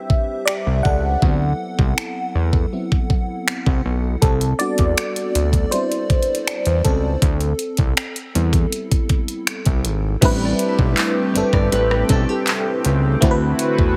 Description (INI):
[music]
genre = contemporary R&B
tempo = 80 BPM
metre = 4/4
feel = straight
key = A dorian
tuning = A4 = 440 Hz
[part]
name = FM electric piano with soft pad layer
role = accompaniment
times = 0.0-14.0 s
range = F#3 to F#5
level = -24 LUFS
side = equal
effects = chorus, phaser
[part]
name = smooth R&B drum kit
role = drums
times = 0.1-14.0 s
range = crash cymbal, finger snaps, handclaps, hi-hat, kick drum, rim click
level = -21 LUFS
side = equal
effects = none
[part]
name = fat analog bass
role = bass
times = 0.7-13.9 s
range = G1 to E2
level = -22 LUFS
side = equal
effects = none
[part]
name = chorused pulse-width pad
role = sustained chords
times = 10.2-14.0 s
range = D3 to B4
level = -29 LUFS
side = equal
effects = sidechain pumping
[part]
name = soft synth bell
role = texture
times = 10.2-12.8 s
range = B4 to E5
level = -35 LUFS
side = equal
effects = none
[part]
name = nylon-string guitar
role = arpeggios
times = 11.5-13.2 s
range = G4 to D5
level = -28 LUFS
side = equal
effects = digital delay
[sound]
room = little or no reverb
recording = heavily compressed radio sound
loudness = -19 LUFS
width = mono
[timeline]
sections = 0.0-10.2 A section; 10.2-14.0 B section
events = FM electric piano solo 0.0-10.2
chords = 0.0 Am11; 1.2 D13; 4.2 Cmaj9#11; 7.2 D13sus4; 10.2 Am11; 13.2 D13